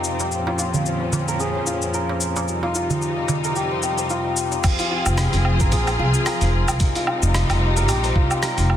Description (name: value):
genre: organic downtempo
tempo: 111 BPM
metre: 4/4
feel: swing 56% on 16ths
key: F minor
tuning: A4 = 436 Hz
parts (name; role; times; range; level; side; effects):
- rich studio string section; sustained chords; 0.0-8.8 s; F2 to Ab4; -25 LUFS; left 1 dB; sidechain pumping
- santur; arpeggios; 0.0-8.8 s; C4 to C5; -25 LUFS; left 1 dB; low-pass filter, ping-pong delay
- dusty soul sampler-style drum kit; drums; 0.0-8.8 s; crash cymbal, hi-hat, rim click, shaker, woodblock; -26 LUFS; equal; soft clipping on snare
- darbuka; percussion; 0.2-4.6 s; none; -27 LUFS; right 4 dB; none
- electronic kick drum; drums; 4.6-8.3 s; none; -19 LUFS; equal; none
- upright bass; bass; 5.1-8.8 s; F1 to C2; -20 LUFS; equal; sidechain pumping
room: light reverb, studio ambience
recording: dense, heavily limited modern master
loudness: -18 LUFS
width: side -10 dB against mid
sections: 0.0-4.6 A section; 4.6-8.8 B section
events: filter sweep on string section 0.0-4.6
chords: 0.3 Bbm7/F; 2.5 Cm7/F; 4.6 Fm; 6.8 Cm7/F